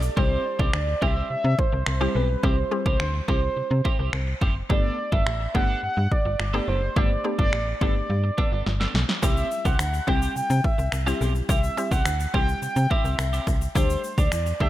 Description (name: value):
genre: dance-pop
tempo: 106 BPM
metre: 4/4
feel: straight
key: unclear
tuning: A4 = 445 Hz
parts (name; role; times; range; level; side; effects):
- twelve-string electric guitar; riff; 0.0-14.7 s; A3 to A4; -33 LUFS; right 3 dB; wide subtle chorus
- slap-like FM bass; bass; 0.0-14.7 s; F#1 to C3; -25 LUFS; equal; sidechain pumping
- egg shaker; percussion; 0.0-0.2, 9.2-14.6 s; none; -40 LUFS; left 8 dB; none
- mellow horn-like synth lead; melody; 0.2-14.7 s; B4 to G5; -28 LUFS; right 1 dB; chorus, digital delay
- mallet-like synth pluck; accompaniment; 0.2-14.7 s; G3 to G4; -31 LUFS; left 2 dB; chorus, phaser, sidechain pumping
- punchy analog drum machine; drums; 0.2-14.7 s; finger snaps, kick drum, snare drum; -24 LUFS; equal; gated reverb
room: light reverb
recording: bright 1980s-style digital production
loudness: -21 LUFS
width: side -14 dB against mid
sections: 0.2-14.7 A section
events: drum fill 8.7-9.2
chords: 0.2 C; 4.7 Gadd9; 9.2 C; 13.8 Dsus4